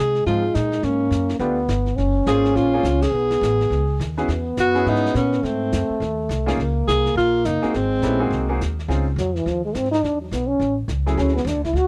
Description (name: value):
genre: jazz, small-group swing and bop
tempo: 208 BPM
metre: 4/4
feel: swing 60% on 8ths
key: Db major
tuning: A4 = 440 Hz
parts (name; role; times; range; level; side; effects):
- breathy alto saxophone; melody; 0.0-8.6 s; C4 to Ab4; -23 LUFS; equal; none
- breathy trombone; second line; 0.0-11.9 s; Fb3 to F#4; -26 LUFS; equal; none
- upright bass; bass; 0.0-11.9 s; Gb1 to C3; -26 LUFS; equal; none
- vintage brush drum kit; drums; 0.1-11.9 s; brushed snare drum, hi-hat, ride cymbal, snare drum; -36 LUFS; equal; none
- clear concert grand piano; accompaniment; 0.3-9.0, 11.1-11.3 s; F3 to C5; -28 LUFS; equal; none
room: small room ambience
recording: dry, close 1970s-style studio recording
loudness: -21 LUFS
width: mono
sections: 0.0-8.9 A section; 8.9-11.9 B section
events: band accent 3.0; trombone solo 8.9-11.9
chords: 0.0 Fm7; 0.8 Ab9sus4; 1.4 G9; 2.0 Gbmaj9#11; 3.1 Cb13; 4.3 E69; 5.4 Ab7b9; 6.6 Db69; 7.7 Ab9; 8.9 Dbmaj9; 10.0 E5; 10.6 A; 11.2 Dmaj9#11